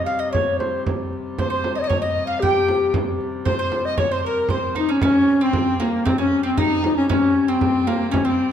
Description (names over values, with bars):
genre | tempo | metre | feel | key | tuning
medieval dance | 115 BPM | 2/4 | straight | C phrygian | A4 = 439 Hz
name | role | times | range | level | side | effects
breathy mellow bass recorder | melody | 0.0-8.5 s | Bb3 to F5 | -19 LUFS | left 2 dB | none
mandolin | second line | 0.0-8.5 s | Bb3 to G5 | -29 LUFS | right 8 dB | none
rich hurdy-gurdy | drone | 0.0-8.5 s | C3 to G3 | -31 LUFS | left 1 dB | none
frame drum | percussion | 0.1-8.5 s | none | -25 LUFS | right 2 dB | none
bright fiddle | second line | 1.4-8.5 s | Bb3 to G5 | -31 LUFS | left 3 dB | none
room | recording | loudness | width
wet recital hall reverb, RT60 1.5 s | dark, warm production | -18 LUFS | side -9 dB against mid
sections
0.0-5.0 A section; 5.0-8.5 B section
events
none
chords
none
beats
0.33 | 0.85 1.37 | 1.90 2.42 | 2.94 3.46 | 3.98 4.50 | 5.02 5.54 | 6.06 6.58 | 7.10 7.62 | 8.13